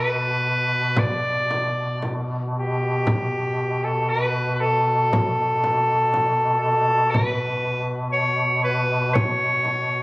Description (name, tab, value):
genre	caucasian folk, Caucasian lament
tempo	56-62 BPM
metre	4/4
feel	rubato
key	B minor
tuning	A4 = 442 Hz
part	breathy soprano saxophone	melody	0.0-10.0 s	G4 to D5	-21 LUFS	equal	none
part	warm duduk	drone	0.0-10.0 s	B2	-25 LUFS	equal	none
part	frame drum	percussion	1.0-9.9 s	none	-25 LUFS	equal	none
room	moderate scoring stage reverb, RT60 1.6 s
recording	recorded on a phone in the room, club reverb, compression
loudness	-19 LUFS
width	side -22 dB against mid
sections	0.0-10.0 A section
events	none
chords	none